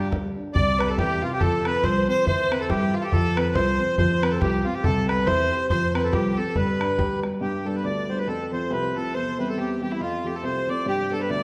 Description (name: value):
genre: celtic folk, Celtic polka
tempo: 140 BPM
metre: 2/4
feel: swing 58% on 8ths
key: unclear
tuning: A4 = 438 Hz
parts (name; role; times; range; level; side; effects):
- accordion; melody; 0.0-11.4 s; E4 to D5; -28 LUFS; equal; none
- rich fiddle; second line; 0.0-11.4 s; E4 to D5; -32 LUFS; equal; none
- warm upright piano; accompaniment; 0.0-11.4 s; C2 to G4; -30 LUFS; equal; none
- upright bass; bass; 0.0-7.2 s; C2 to G2; -29 LUFS; equal; none
- bodhran; percussion; 0.1-7.3 s; none; -30 LUFS; equal; none
room: wet recital hall reverb, RT60 1.4 s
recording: none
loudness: -24 LUFS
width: mono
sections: 0.5-7.4 A section; 7.4-11.4 B section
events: none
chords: 0.0 G5; 0.5 C; 1.4 F5; 2.3 C/E; 3.1 F5; 4.8 C; 5.7 F5; 6.6 G; 8.3 F; 9.1 C/E; 10.0 F; 10.9 G